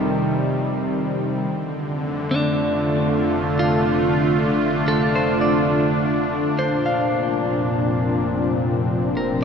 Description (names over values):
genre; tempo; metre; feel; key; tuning
ambient; 70 BPM; 3/4; straight; unclear; A4 = 440 Hz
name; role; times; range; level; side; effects
warm analog pad; sustained chords; 0.0-9.4 s; Bb2 to F4; -19 LUFS; equal; chorus
clean electric guitar; arpeggios; 0.0-9.4 s; D4 to F5; -26 LUFS; equal; tape echo
bright symphonic double bass section; bass; 0.0-9.4 s; F1; -31 LUFS; equal; none
bowed-like drone; drone; 0.0-9.4 s; F3 to C4; -35 LUFS; left 2 dB; none
room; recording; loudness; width
wet cathedral reverb, RT60 6.2 s; in a vast, echoing space; -18 LUFS; side -6 dB against mid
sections
0.0-9.4 A section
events
fade-in on double bass section 0.0-9.4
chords
0.0 Cm/F; 1.5 Dm7/F; 6.6 Bb/F